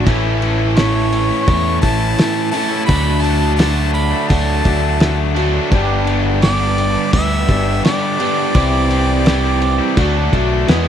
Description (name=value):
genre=classic rock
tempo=85 BPM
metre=4/4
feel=straight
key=unclear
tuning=A4 = 439 Hz
part: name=picked swing-style acoustic guitar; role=accompaniment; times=0.0-10.9 s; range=G2 to G#4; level=-25 LUFS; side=left 6 dB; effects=none
part: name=biting overdriven guitar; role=riff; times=0.0-10.9 s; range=G2 to E4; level=-22 LUFS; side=equal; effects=none
part: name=distorted electric guitar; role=riff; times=0.0-10.9 s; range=E2 to G#4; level=-22 LUFS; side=right 12 dB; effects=distortion
part: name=tight distorted guitar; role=riff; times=0.0-10.9 s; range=G2 to E4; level=-24 LUFS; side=left 15 dB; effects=distortion
part: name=picked electric bass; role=bass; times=0.0-10.9 s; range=G1 to E2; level=-18 LUFS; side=equal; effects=none
part: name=cloth-damped thuddy drum kit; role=drums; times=0.1-10.9 s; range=crash cymbal, kick drum, snare drum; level=-19 LUFS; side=equal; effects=none
part: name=clear harmonica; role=melody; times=0.8-10.6 s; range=C#5 to C#6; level=-22 LUFS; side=equal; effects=none
room=light reverb, small room ambience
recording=none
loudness=-13 LUFS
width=side -9 dB against mid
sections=0.0-10.9 A section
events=none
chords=0.1 A; 2.9 D; 5.7 G; 8.6 C; 10.0 D